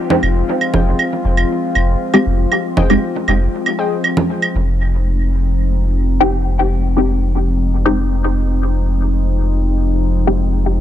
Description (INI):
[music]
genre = dub techno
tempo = 118 BPM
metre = 4/4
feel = straight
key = F minor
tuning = A4 = 440 Hz
[part]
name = warbly tape-like pad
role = sustained chords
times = 0.0-10.8 s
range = F3 to F4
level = -21 LUFS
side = left 2 dB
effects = chorus, built-in reverb
[part]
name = congas and claves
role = percussion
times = 0.1-4.5 s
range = none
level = -19 LUFS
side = right 4 dB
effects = dub echo
[part]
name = warm sub bass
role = bass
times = 0.2-10.8 s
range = F1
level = -16 LUFS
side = equal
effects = none
[part]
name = warbly dusty pluck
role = riff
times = 0.7-3.9 s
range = Ab4 to G5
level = -26 LUFS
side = left 4 dB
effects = chorus, phaser, dub echo
[part]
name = filtered dub chord stab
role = stabs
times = 2.1-3.0, 6.2-10.4 s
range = Ab3 to G4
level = -18 LUFS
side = left 1 dB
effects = phaser, dub echo
[sound]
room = digital ambience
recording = dry, gritty hardware recording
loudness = -14 LUFS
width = side -11 dB against mid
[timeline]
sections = 0.0-4.5 A section; 4.5-10.8 B section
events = filter sweep on synth stab 0.0-4.5, 4.5-10.8; break 3.5-4.5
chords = 0.0 Fm7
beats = | 0.48 0.99 1.50 2.01 | 2.52 3.02 3.53 4.04 | 4.55 5.06 5.57 6.08 | 6.58 7.09 7.60 8.11 | 8.62 9.13 9.63 10.14 | 10.65